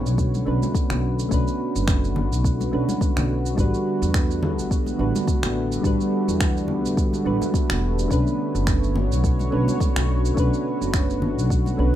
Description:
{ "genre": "sunset chillout", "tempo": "106 BPM", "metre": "4/4", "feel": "swing 56% on 16ths", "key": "B minor", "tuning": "A4 = 441 Hz", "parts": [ { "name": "soft electric-piano-like synth keys", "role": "accompaniment", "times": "0.0-12.0 s", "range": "G3 to B4", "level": "-26 LUFS", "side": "moving between left 3 dB and right 5 dB", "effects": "chorus, auto-pan, ping-pong delay, plate reverb" }, { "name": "lush unison pad", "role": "sustained chords", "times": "0.0-12.0 s", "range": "D3 to C#5", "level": "-28 LUFS", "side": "equal", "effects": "chorus, plate reverb" }, { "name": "upright bass", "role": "bass", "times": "0.0-11.9 s", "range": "E1 to E2", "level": "-24 LUFS", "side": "equal", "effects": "tube saturation" }, { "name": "electronic shaker and finger snaps", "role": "drums", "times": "0.1-11.8 s", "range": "none", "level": "-31 LUFS", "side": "right 1 dB", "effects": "none" }, { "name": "electronic kick drum", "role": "drums", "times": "0.2-11.6 s", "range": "none", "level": "-23 LUFS", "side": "equal", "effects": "none" }, { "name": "congas", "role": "percussion", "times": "0.3-11.8 s", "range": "none", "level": "-30 LUFS", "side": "left 3 dB", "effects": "none" } ], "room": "moderate studio reverb, RT60 0.7 s", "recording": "rough home demo mix", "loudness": "-20 LUFS", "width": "side -12 dB against mid", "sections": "0.0-12.0 A section", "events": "none", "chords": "0.0 Bm9; 3.6 A13sus4; 8.1 Bm9", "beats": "0.18 0.75 | 1.31 1.88 2.45 3.01 | 3.58 4.14 4.71 5.28 | 5.84 6.41 6.97 7.54 | 8.11 8.67 9.24 9.80 | 10.37 10.94 11.50" }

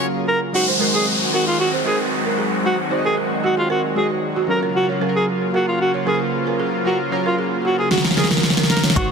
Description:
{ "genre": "afrobeats", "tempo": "114 BPM", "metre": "4/4", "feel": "straight", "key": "unclear", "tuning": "A4 = 440 Hz", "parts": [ { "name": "warm analog keys", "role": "accompaniment", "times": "0.0-9.1 s", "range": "Gb3 to Eb5", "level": "-25 LUFS", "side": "equal", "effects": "chorus" }, { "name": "lush unison pad", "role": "sustained chords", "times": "0.0-9.1 s", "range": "C3 to Gb4", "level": "-24 LUFS", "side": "equal", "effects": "chorus" }, { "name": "breathy alto saxophone", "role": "melody", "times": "0.3-9.1 s", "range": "F4 to Bb4", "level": "-22 LUFS", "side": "equal", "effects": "digital delay" }, { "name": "downlifter", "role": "sound effects", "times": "0.5-4.8 s", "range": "none", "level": "-23 LUFS", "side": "left 1 dB", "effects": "none" }, { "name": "balafon", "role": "riff", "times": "0.7-8.9 s", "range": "Gb4 to Db5", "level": "-26 LUFS", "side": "right 7 dB", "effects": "digital delay" }, { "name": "deep house drum kit", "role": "drums", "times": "7.9-9.1 s", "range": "kick drum, shaker, snare drum", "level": "-16 LUFS", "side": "equal", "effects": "none" }, { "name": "punchy sub bass", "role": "bass", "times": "9.0-9.1 s", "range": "Ab1", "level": "-24 LUFS", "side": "equal", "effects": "none" }, { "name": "agogo bells", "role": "percussion", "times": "9.0-9.1 s", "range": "none", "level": "-30 LUFS", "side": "left 4 dB", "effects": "none" } ], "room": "light reverb, small room ambience", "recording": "dense, heavily limited modern master", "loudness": "-16 LUFS", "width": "side -5 dB against mid", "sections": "0.5-9.0 A section", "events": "break 0.0-0.5; drum fill 7.9-9.0", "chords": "0.0 Gbmaj7; 0.5 Ab7; 4.5 Gbmaj7", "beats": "0.01 | 0.54 1.06 1.59 2.12 | 2.64 3.17 3.70 4.22 | 4.75 5.28 5.80 6.33 | 6.86 7.38 7.91 8.43 | 8.96" }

